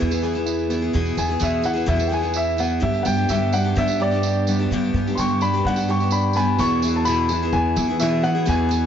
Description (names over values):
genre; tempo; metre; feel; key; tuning
folk rock and heartland rock; 128 BPM; 4/4; straight; unclear; A4 = 440 Hz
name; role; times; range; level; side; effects
dark baby grand piano; melody; 0.0-8.9 s; B3 to C#6; -24 LUFS; left 1 dB; slapback echo
picked steel-string acoustic guitar; accompaniment; 0.0-8.9 s; E2 to G#4; -25 LUFS; left 2 dB; none
electric guitar through a small old amp; riff; 0.0-8.9 s; E2 to G#4; -25 LUFS; right 2 dB; none
upright bass; bass; 0.0-8.9 s; E2 to E3; -24 LUFS; equal; none
tambourine; percussion; 0.0-8.8 s; none; -34 LUFS; right 10 dB; none
room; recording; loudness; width
light reverb; nothing above 7.7 kHz; -18 LUFS; side -9 dB against mid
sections
0.0-6.6 A section; 6.6-8.9 B section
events
grand piano solo 0.0-6.6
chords
0.0 E; 2.8 G; 6.6 E